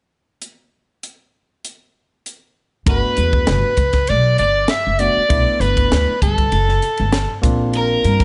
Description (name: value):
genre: electric jazz fusion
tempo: 98 BPM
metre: 4/4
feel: straight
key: G major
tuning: A4 = 440 Hz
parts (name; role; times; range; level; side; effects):
- crisp fusion drum kit; drums; 0.4-8.2 s; hi-hat, kick drum, ride cymbal, snare drum; -22 LUFS; equal; none
- warm soprano saxophone; melody; 2.9-8.2 s; A4 to E5; -21 LUFS; equal; none
- overdriven electric guitar; second line; 2.9-8.2 s; A4 to E5; -28 LUFS; equal; none
- barky tine electric piano; accompaniment; 2.9-8.2 s; A3 to F#4; -26 LUFS; equal; overdrive, phaser
- upright bass; bass; 2.9-8.2 s; F#1 to G2; -21 LUFS; equal; none
room: little or no reverb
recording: nothing above 10.7 kHz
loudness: -17 LUFS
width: mono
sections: 0.4-2.9 A section; 2.9-8.2 B section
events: none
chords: 0.4 N.C.; 2.9 Gmaj9; 7.4 Bbadd9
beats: | 0.41 1.02 1.63 2.25 | 2.86 3.47 4.08 4.69 | 5.30 5.91 6.52 7.13 | 7.74